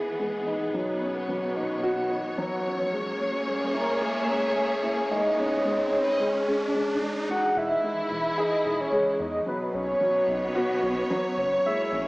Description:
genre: piano and strings electronica.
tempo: 110 BPM.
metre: 4/4.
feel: straight.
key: unclear.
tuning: A4 = 440 Hz.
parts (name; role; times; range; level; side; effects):
warm velvety synth lead; melody; 0.0-12.1 s; B4 to A#5; -28 LUFS; equal; chorus, tremolo, diffuse ambient delay.
warm studio string section; sustained chords; 0.0-12.1 s; B2 to E5; -31 LUFS; equal; none.
dark baby grand piano; riff; 0.0-12.1 s; F#3 to G#4; -27 LUFS; equal; lush chorus, diffuse ambient delay.
riser; sound effects; 0.7-7.3 s; none; -35 LUFS; right 1 dB; none.
round analog bass; bass; 7.6-12.1 s; E1 to E2; -40 LUFS; equal; tube saturation.
room: wet plate reverb, RT60 3.0 s.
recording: dreamy mix soaked in reverb, small speaker sound.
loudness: -24 LUFS.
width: side -22 dB against mid.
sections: 0.0-7.3 A section; 7.3-12.1 B section.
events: build-up 0.0-7.3; filter sweep on soft synth lead 0.0-7.3; riser 0.7-7.3; drop 7.3-12.1.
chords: 0.0 Emaj7; 0.7 Badd9; 2.9 A#m7b5; 5.1 G#5; 7.3 Emaj7; 9.5 Badd9.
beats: 0.20 | 0.74 1.29 1.83 2.38 | 2.92 3.47 4.02 4.56 | 5.11 5.65 6.20 6.74 | 7.29 7.83 8.38 8.93 | 9.47 10.02 10.56 11.11 | 11.65.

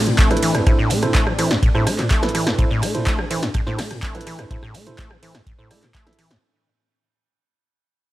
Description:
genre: acid house.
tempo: 125 BPM.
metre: 4/4.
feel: straight.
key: A minor.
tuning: A4 = 440 Hz.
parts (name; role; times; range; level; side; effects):
warm analog pad; sustained chords; 0.0-6.4 s; A2 to D4; -27 LUFS; equal; lush chorus, sidechain pumping.
deep acid bass; riff; 0.0-6.4 s; G2 to A3; -23 LUFS; equal; tube saturation, wide subtle chorus, sidechain pumping, digital delay.
compact cocktail drum kit; drums; 0.1-6.4 s; hi-hat, ride cymbal, snare drum; -38 LUFS; right 3 dB; none.
punchy analog drum machine; drums; 0.1-6.4 s; handclaps, hi-hat, ride cymbal, rim click, snare drum; -24 LUFS; equal; overdrive.
electronic kick drum; drums; 0.2-6.0 s; none; -19 LUFS; equal; none.
tine electric piano; stabs; 0.3-6.2 s; E4 to E5; -27 LUFS; right 4 dB; digital delay.
room: small room ambience.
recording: none.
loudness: -16 LUFS.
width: side -16 dB against mid.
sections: 0.0-6.4 A section.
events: drop 0.0-6.4; fade-out 0.0-6.4.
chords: 0.0 Am.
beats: 0.19 | 0.67 1.15 1.63 2.11 | 2.59 3.07 3.55 4.03 | 4.51 4.99 5.47 5.95.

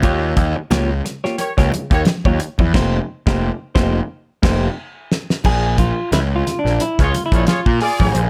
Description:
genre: funk.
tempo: 89 BPM.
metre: 4/4.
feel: swing 56% on 16ths.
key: unclear.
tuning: A4 = 439 Hz.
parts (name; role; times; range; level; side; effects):
clean electric guitar; accompaniment; 0.0-8.3 s; Bb3 to Db5; -23 LUFS; equal; none.
fuzz picked electric bass; bass; 0.0-8.3 s; F1 to Bb2; -21 LUFS; equal; overdrive.
damped 70s drum kit; drums; 0.0-8.3 s; crash cymbal, hi-hat, kick drum, snare drum; -21 LUFS; equal; none.
congas; percussion; 0.0-8.3 s; none; -28 LUFS; equal; none.
warm horn section; second line; 1.4-2.0, 7.0-8.3 s; F4 to D5; -24 LUFS; equal; none.
room: light reverb.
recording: none.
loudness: -18 LUFS.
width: mono.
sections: 0.0-5.4 A section; 5.4-8.3 B section.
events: band accent 2.7-5.4; drum fill 4.8-5.4; clean electric guitar solo 5.4-8.3.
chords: 0.0 Eb9; 2.7 F9sus4; 5.4 Bbm7.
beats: | 0.04 0.71 1.39 2.07 | 2.74 3.42 4.09 4.77 | 5.45 6.12 6.80 7.47 | 8.15.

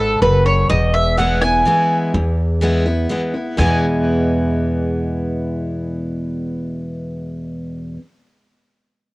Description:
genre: bluegrass.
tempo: 125 BPM.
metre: 3/4.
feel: straight.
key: E major.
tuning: A4 = 440 Hz.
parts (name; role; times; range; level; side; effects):
mandolin; melody; 0.0-7.9 s; A4 to G#5; -17 LUFS; equal; cassette tape.
picked steel-string acoustic guitar; accompaniment; 0.0-8.0 s; E2 to E4; -20 LUFS; equal; cassette tape.
upright bass; bass; 0.0-7.9 s; E1 to E2; -20 LUFS; equal; none.
room: moderate spring reverb, RT60 2.4 s.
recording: home recording on cassette.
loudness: -15 LUFS.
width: side -22 dB against mid.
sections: 0.0-2.1 A section; 2.1-3.6 B section; 3.6-6.5 C section.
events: none.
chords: 0.0 F#madd9; 0.7 E.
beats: 0.22 | 0.70 1.18 1.66 | 2.14 2.62 3.10 | 3.58 4.06 4.54 | 5.02 5.50 5.99.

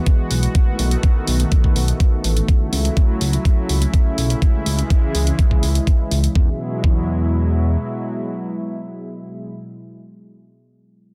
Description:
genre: progressive house.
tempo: 124 BPM.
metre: 4/4.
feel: straight.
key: E major.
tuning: A4 = 440 Hz.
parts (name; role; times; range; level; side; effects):
lush unison pad; sustained chords; 0.0-9.5 s; B2 to F#4; -27 LUFS; equal; chorus, sidechain pumping.
electronic hi-hat; drums; 0.1-6.3 s; none; -29 LUFS; equal; overdrive.
electronic kick drum; drums; 0.1-7.0 s; none; -17 LUFS; equal; none.
fat analog bass; bass; 0.3-7.8 s; A1 to E2; -20 LUFS; equal; sidechain pumping.
room: little or no reverb.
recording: dense, heavily limited modern master.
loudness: -18 LUFS.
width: mono.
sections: 0.0-6.4 A section; 6.4-10.2 B section.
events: none.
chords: 0.0 Eadd9; 0.5 B7; 2.5 A6/C#; 4.4 C#m; 6.4 Eadd9.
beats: 0.07 | 0.55 1.03 1.52 2.00 | 2.48 2.97 3.45 3.94 | 4.42 4.90 5.39 5.87 | 6.36 6.84 7.32 7.81 | 8.29 8.78 9.26.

